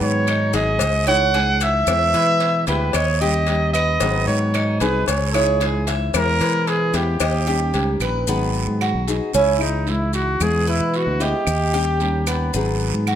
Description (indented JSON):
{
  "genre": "latin, Cuban son and guajira",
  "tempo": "112 BPM",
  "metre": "4/4",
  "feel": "straight",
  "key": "G# minor",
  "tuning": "A4 = 444 Hz",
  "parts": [
    { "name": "warm trumpet", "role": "melody", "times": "0.0-12.5 s", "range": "D#4 to F#5", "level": "-21 LUFS", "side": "right 1 dB", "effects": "slapback echo" },
    { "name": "nylon-string guitar", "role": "accompaniment", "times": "0.0-13.2 s", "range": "B2 to G#4", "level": "-26 LUFS", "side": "left 5 dB", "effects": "none" },
    { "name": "Cuban tres", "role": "arpeggios", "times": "0.0-13.2 s", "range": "B3 to E5", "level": "-24 LUFS", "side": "right 3 dB", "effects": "none" },
    { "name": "fretless electric bass", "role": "bass", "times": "0.0-13.2 s", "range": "G#1 to E3", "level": "-22 LUFS", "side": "equal", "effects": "none" },
    { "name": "maracas", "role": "percussion", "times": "0.0-13.2 s", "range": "none", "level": "-32 LUFS", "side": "left 10 dB", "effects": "none" },
    { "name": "claves", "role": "percussion", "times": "0.3-13.2 s", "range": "none", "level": "-33 LUFS", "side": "right 8 dB", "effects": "none" },
    { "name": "cowbell", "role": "percussion", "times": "0.3-8.0 s", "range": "none", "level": "-28 LUFS", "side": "left 9 dB", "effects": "none" },
    { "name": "guiro", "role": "percussion", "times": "0.3-13.2 s", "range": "none", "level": "-33 LUFS", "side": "right 9 dB", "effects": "none" }
  ],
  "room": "moderate large studio reverb, RT60 1.3 s",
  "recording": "none",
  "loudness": "-17 LUFS",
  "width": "side -10 dB against mid",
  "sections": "0.0-8.3 A section; 8.3-13.2 B section",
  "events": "trumpet solo 8.3-13.2",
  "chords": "0.0 G#m7; 0.8 C#madd9; 1.9 E; 2.9 D#7; 4.0 G#m7; 5.1 C#madd9; 6.1 E; 7.2 D#7; 8.3 G#m7; 9.3 C#madd9; 10.4 E; 11.5 D#7; 12.5 G#m7"
}